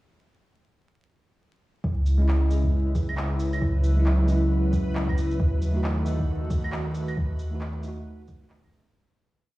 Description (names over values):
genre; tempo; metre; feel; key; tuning
future garage; 135 BPM; 4/4; swing 62% on 16ths; C# minor; A4 = 439 Hz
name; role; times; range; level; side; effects
airy breathy pad; sustained chords; 1.8-8.9 s; C#3 to F#4; -30 LUFS; equal; chorus, sidechain pumping
soft 808-style bass; bass; 1.8-8.9 s; C#2 to D#2; -24 LUFS; equal; tube saturation, sidechain pumping
electronic kick drum; drums; 1.8-8.7 s; none; -26 LUFS; equal; none
backwards swelling texture; texture; 2.7-9.0 s; B4; -43 LUFS; equal; built-in reverb
electronic shaker, handclaps and claves; drums; 2.1-8.9 s; none; -37 LUFS; right 1 dB; none
bell-like tine electric piano; accompaniment; 2.2-8.9 s; G#3 to A4; -32 LUFS; equal; vintage 12-bit sampler grit, sidechain pumping, tape echo
room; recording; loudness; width
light reverb, digital ambience; played on a big sound system in a bare room, stone room reverb, vinyl crackle; -22 LUFS; side -18 dB against mid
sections
1.8-8.9 groove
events
fade-out 6.6-8.9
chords
1.8 C#m; 5.4 D#dim